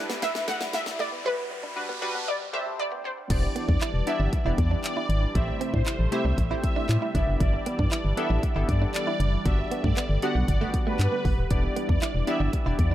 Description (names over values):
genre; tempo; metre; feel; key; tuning
dance-pop; 117 BPM; 4/4; straight; unclear; A4 = 440 Hz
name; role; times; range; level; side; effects
wide unison pluck; melody; 0.0-3.3 s; B4 to F#5; -30 LUFS; equal; lush chorus, tape echo
funky polysynth comp; accompaniment; 0.0-12.9 s; G3 to D5; -32 LUFS; left 1 dB; chorus, sidechain pumping, tape echo
sweeping resonant pad; sustained chords; 0.0-12.9 s; C3 to D5; -36 LUFS; equal; chorus, phaser, sidechain pumping
riser; sound effects; 0.0-2.3 s; none; -36 LUFS; equal; none
direct-recorded clean electric guitar; riff; 0.1-12.9 s; G3 to E4; -35 LUFS; right 5 dB; wide subtle chorus, tape echo
pop drum kit; drums; 0.1-12.9 s; crash cymbal, handclaps, hi-hat, kick drum, snare drum; -27 LUFS; equal; none
filtered supersaw swell; melody; 3.3-12.9 s; B4 to F#5; -32 LUFS; equal; phaser, sidechain pumping, tape echo
organ-like FM bass; bass; 3.3-12.9 s; Eb1 to A2; -24 LUFS; equal; sidechain pumping
room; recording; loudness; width
light reverb; echo-heavy mix, high-pass filter; -23 LUFS; side -13 dB against mid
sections
0.0-3.3 A section; 3.3-12.9 B section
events
build-up 0.0-3.3; drum fill 0.0-1.2; riser 0.0-3.3; drop 3.3-12.9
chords
0.0 Em7/G; 1.2 Gmaj7; 2.3 D7sus4; 3.3 Em7; 5.4 Am7; 7.1 Em7; 9.5 Gmaj7; 11.5 Em7